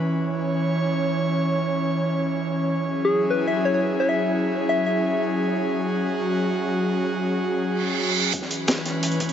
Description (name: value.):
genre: liquid drum and bass.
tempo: 173 BPM.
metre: 4/4.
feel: straight.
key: C# minor.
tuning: A4 = 439 Hz.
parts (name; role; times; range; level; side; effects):
airy breathy pad; sustained chords; 0.0-9.3 s; E3 to C#5; -22 LUFS; equal; chorus.
soft struck synth lead; melody; 3.0-5.2 s; G#4 to E5; -24 LUFS; left 1 dB; chorus, digital delay.
reverse cymbal and riser; sound effects; 7.8-9.3 s; none; -26 LUFS; right 7 dB; none.
breakbeat sampler-style drum kit; drums; 8.3-9.3 s; hi-hat, snare drum; -26 LUFS; equal; high-pass filter on hats, high-pass filter on snare, high-pass filter on cymbals.
crunchy breakbeat drum kit; drums; 8.3-9.3 s; hi-hat, snare drum; -30 LUFS; equal; high-pass filter on hats, high-pass filter on snare, high-pass filter on room.
electronic kick drum; drums; 8.3-9.3 s; none; -36 LUFS; equal; high-pass filter on kick.
room: moderate huge ambient reverb, RT60 7.6 s.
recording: nothing above 7.8 kHz.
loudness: -21 LUFS.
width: side -9 dB against mid.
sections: 0.0-8.3 A section.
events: reverse cymbal 7.8-8.3; riser 8.3-9.3.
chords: 0.0 C#m; 2.8 E69; 8.3 C#m7.